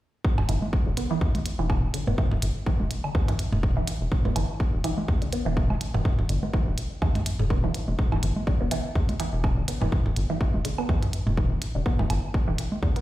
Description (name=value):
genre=minimal techno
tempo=124 BPM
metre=4/4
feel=swing 56% on 16ths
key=E minor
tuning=A4 = 440 Hz
part: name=electronic kick drum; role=drums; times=0.2-12.9 s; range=none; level=-25 LUFS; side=equal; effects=none
part: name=rubbery square bass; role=bass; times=0.4-12.9 s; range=D1 to E2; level=-27 LUFS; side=equal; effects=sidechain pumping
part: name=electronic toms, woodblock and congas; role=percussion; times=0.4-12.8 s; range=none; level=-30 LUFS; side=right 1 dB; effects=overdrive, digital delay
part: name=resonant blip pluck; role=riff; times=0.5-13.0 s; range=D3 to B3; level=-31 LUFS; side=right 1 dB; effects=phaser, lush chorus, sidechain pumping, ping-pong delay
part: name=electronic hi-hat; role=drums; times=0.5-13.0 s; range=none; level=-36 LUFS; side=right 2 dB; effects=none
room=digital ambience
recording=played on a big sound system in a bare room, large studio reverb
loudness=-23 LUFS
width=side -15 dB against mid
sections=0.2-13.0 A section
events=none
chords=none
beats=| 0.25 0.73 1.21 1.70 | 2.18 2.67 3.15 3.63 | 4.12 4.60 5.08 5.57 | 6.05 6.54 7.02 7.50 | 7.99 8.47 8.96 9.44 | 9.92 10.41 10.89 11.38 | 11.86 12.34 12.83